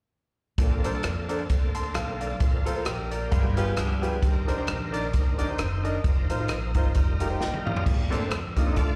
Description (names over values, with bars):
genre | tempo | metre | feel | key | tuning
uptempo gospel | 132 BPM | 4/4 | swing 57% on 8ths | Bb major | A4 = 435 Hz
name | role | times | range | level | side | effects
clear grand piano | accompaniment | 0.6-8.8 s | G2 to C6 | -33 LUFS | equal | plate reverb, slapback echo
bright tonewheel organ | sustained chords | 0.6-9.0 s | D3 to Eb5 | -37 LUFS | equal | slow rotary speaker, overdrive, chorus vibrato, plate reverb
upright bass | bass | 0.6-9.0 s | F1 to F2 | -31 LUFS | equal | none
swinging big-band drum kit | drums | 0.6-8.9 s | crash cymbal, hi-hat, kick drum, rim click, snare drum, toms | -29 LUFS | equal | none
clean electric guitar | second line | 3.3-4.2 s | F3 to G4 | -38 LUFS | equal | slapback echo, plate reverb
room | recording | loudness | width
little or no reverb | live gig heard through the venue's PA, club reverb | -26 LUFS | mono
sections
0.6-7.9 A section; 7.9-9.0 B section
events
drum fill 7.4-7.9; tonewheel organ solo 7.9-9.0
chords
0.6 Bbmaj9; 2.4 Bbmaj13; 3.3 G7b9; 4.2 Cm9; 6.0 F7sus4; 7.0 F9sus4; 7.9 Bbmaj9